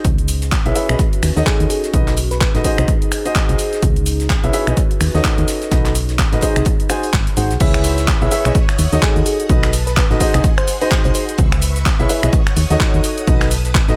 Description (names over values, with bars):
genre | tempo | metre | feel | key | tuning
piano house | 127 BPM | 4/4 | swing 58% on 16ths | C# minor | A4 = 440 Hz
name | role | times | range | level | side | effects
warm concert grand piano | riff | 0.0-14.0 s | D#4 to G#5 | -24 LUFS | equal | sidechain pumping, tape echo
solid FM bass | bass | 0.0-13.9 s | G#1 to D#2 | -20 LUFS | equal | sidechain pumping
electronic kick drum | drums | 0.0-13.9 s | none | -19 LUFS | equal | none
house drum kit | drums | 0.0-14.0 s | cabasa, crash cymbal, finger snaps, handclaps, hi-hat | -25 LUFS | equal | none
warbly tape-like pad | texture | 0.0-7.6 s | C#4 to C#5 | -30 LUFS | equal | chorus, built-in reverb, sidechain pumping
damped 70s drum kit | drums | 0.1-14.0 s | hi-hat, snare drum | -37 LUFS | equal | none
bell-like FM electric piano | melody | 1.5-2.5, 9.0-11.2 s | G#4 to B#4 | -27 LUFS | equal | chorus, tape echo
string machine, violins | sustained chords | 7.6-14.0 s | G#4 to E6 | -32 LUFS | equal | ensemble chorus, sidechain pumping
room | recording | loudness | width
digital ambience | none | -16 LUFS | mono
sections
0.0-7.6 A section; 7.6-14.0 B section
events
drop 7.6-14.0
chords
0.0 C#m7; 1.0 D#m7b5; 1.9 B7; 2.6 G#7/B#; 3.8 C#m7; 4.8 D#m7b5; 5.7 B7; 6.4 G#7/B#; 7.6 C#m7; 8.6 D#m7b5; 9.5 B7; 10.2 G#7/B#; 11.4 C#m7; 12.3 D#m7b5; 13.3 B7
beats
| 0.05 0.52 0.99 1.46 | 1.94 2.41 2.88 3.35 | 3.83 4.30 4.77 5.24 | 5.71 6.19 6.66 7.13 | 7.61 8.08 8.55 9.02 | 9.49 9.97 10.44 10.91 | 11.38 11.86 12.33 12.80 | 13.28 13.75